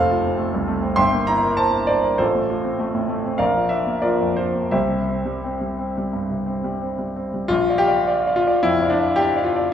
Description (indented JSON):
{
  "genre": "classical, romantic character piece for solo piano",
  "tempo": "83-111 BPM",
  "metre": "4/4",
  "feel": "rubato",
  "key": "unclear",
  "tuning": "A4 = 442 Hz",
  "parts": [
    { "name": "clear grand piano", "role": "solo", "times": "0.0-9.7 s", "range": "F1 to C6", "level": "-18 LUFS", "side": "equal", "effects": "none" }
  ],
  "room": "wet recital hall reverb, RT60 1.4 s",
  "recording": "heard from further back in the room",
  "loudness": "-18 LUFS",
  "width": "side -9 dB against mid",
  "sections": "0.0-7.5 A section; 7.5-9.7 B section",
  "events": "none",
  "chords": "0.0 F; 1.0 C7/G; 2.2 F/A; 3.4 Bb; 4.7 C; 7.5 Bb"
}